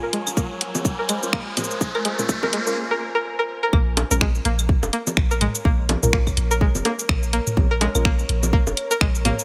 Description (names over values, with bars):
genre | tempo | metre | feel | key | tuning
minimal techno | 125 BPM | 4/4 | swing 58% on 16ths | Bb minor | A4 = 439 Hz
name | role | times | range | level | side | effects
string-like resonator pluck | riff | 0.0-9.3 s | Ab3 to Bb4 | -28 LUFS | equal | chorus, vintage 12-bit sampler grit, sidechain pumping, dub echo
punchy sub bass | bass | 0.0-9.3 s | F1 to Bb1 | -26 LUFS | equal | sidechain pumping, high-pass filter
riser | sound effects | 0.0-2.8 s | none | -32 LUFS | equal | none
deep dark ambient pad | texture | 0.0-9.4 s | F4 to Ab5 | -37 LUFS | equal | chorus, built-in reverb, sidechain pumping
house drum kit | drums | 0.1-9.4 s | cabasa, finger snaps, hi-hat | -27 LUFS | equal | none
filtered dub chord stab | stabs | 0.3-8.0 s | Ab3 to Bb4 | -32 LUFS | equal | chorus, cassette tape, dub echo
electronic claves, bongos and toms | percussion | 0.3-9.4 s | none | -29 LUFS | equal | dub echo
electronic kick drum | drums | 0.4-9.1 s | none | -23 LUFS | equal | none
swarming drone | texture | 5.1-9.4 s | Bb4 | -39 LUFS | equal | none
room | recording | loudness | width
light reverb, digital ambience | high-pass filter | -21 LUFS | mono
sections
0.0-3.7 A section; 3.7-9.4 B section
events
build-up 0.0-3.7; riser 0.0-2.8; filter sweep on synth pluck 0.0-3.7; filter sweep on synth stab 0.0-3.7; drop 3.7-9.4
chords
0.0 Bbm7; 3.7 Bbm